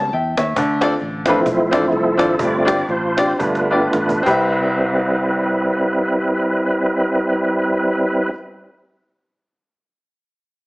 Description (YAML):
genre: uptempo gospel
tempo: 102-136 BPM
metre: 4/4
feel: swing 57% on 8ths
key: C major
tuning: A4 = 436 Hz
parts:
  - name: clear baby grand piano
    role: accompaniment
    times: 0.0-8.3 s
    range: C2 to A5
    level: -19 LUFS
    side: left 1 dB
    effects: none
  - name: bright tonewheel organ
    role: sustained chords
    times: 0.0-8.3 s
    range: F3 to D5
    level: -17 LUFS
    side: right 1 dB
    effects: slow rotary speaker, chorus vibrato
  - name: fingered electric bass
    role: bass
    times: 0.0-8.3 s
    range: G1 to E2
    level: -29 LUFS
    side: equal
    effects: none
  - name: cajon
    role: drums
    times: 0.1-4.4 s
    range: none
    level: -25 LUFS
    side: equal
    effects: none
room: moderate large studio reverb, RT60 1.1 s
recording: heavily compressed radio sound, small speaker sound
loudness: -15 LUFS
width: side -22 dB against mid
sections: 0.0-4.5 A section; 4.5-9.2 B section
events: tonewheel organ solo 0.0-4.5; slowing down 0.6-4.5; drum fill 3.4-4.5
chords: 0.0 A7; 0.6 Dm7; 2.4 G7sus4; 3.4 G7; 4.2 Cmaj7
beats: 0.13 | 0.57 1.01 1.46 1.93 | 2.40 2.89 3.40 3.94 | 4.52 5.11 5.70 6.29 | 6.88 7.47 8.06